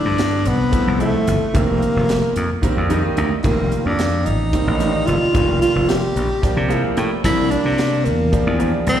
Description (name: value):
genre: electric jazz fusion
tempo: 221 BPM (eighths)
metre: 7/8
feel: straight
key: unclear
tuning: A4 = 440 Hz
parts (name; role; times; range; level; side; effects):
- warm tenor saxophone; melody; 0.0-9.0 s; A3 to G4; -20 LUFS; equal; slapback echo
- clear grand piano; accompaniment; 0.0-9.0 s; Eb3 to G5; -22 LUFS; right 2 dB; slapback echo
- slap bass; bass; 0.1-9.0 s; F1 to C3; -20 LUFS; equal; none
- tight funk drum kit; drums; 0.2-9.0 s; hi-hat, kick drum, snare drum; -22 LUFS; equal; none
room: light reverb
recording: live gig heard through the venue's PA, recital hall reverb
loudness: -16 LUFS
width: side -10 dB against mid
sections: 0.0-9.0 A section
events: grand piano fill 6.4-7.2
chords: 0.0 G9sus4; 1.5 F9sus4; 6.4 C9sus4